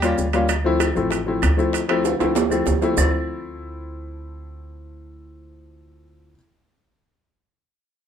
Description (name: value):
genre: Afro-Cuban jazz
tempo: 194 BPM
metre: 4/4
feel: straight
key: D minor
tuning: A4 = 440 Hz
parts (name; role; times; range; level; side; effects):
- warm baby grand piano; accompaniment; 0.0-6.4 s; F3 to F4; -22 LUFS; left 3 dB; none
- upright bass; bass; 0.0-6.3 s; A1 to Eb2; -25 LUFS; right 1 dB; none
- bongos; percussion; 0.0-3.0 s; none; -31 LUFS; left 5 dB; none
- claves; percussion; 0.0-3.0 s; none; -31 LUFS; right 1 dB; none
- maracas; percussion; 0.0-3.0 s; none; -32 LUFS; right 7 dB; none
- timbales; percussion; 0.0-3.0 s; none; -25 LUFS; right 9 dB; none
room: moderate club reverb, RT60 0.6 s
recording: minimal, uncompressed stereo recording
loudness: -18 LUFS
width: side -8 dB against mid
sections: 0.0-3.0 A section; 3.0-5.5 B section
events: drum fill 2.0-3.0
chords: 0.5 Dm7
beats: 0.19 | 0.50 0.81 1.12 1.43 | 1.74 2.05 2.36 2.67 | 2.98 3.29 3.60 3.91 | 4.21 4.53 4.83 5.14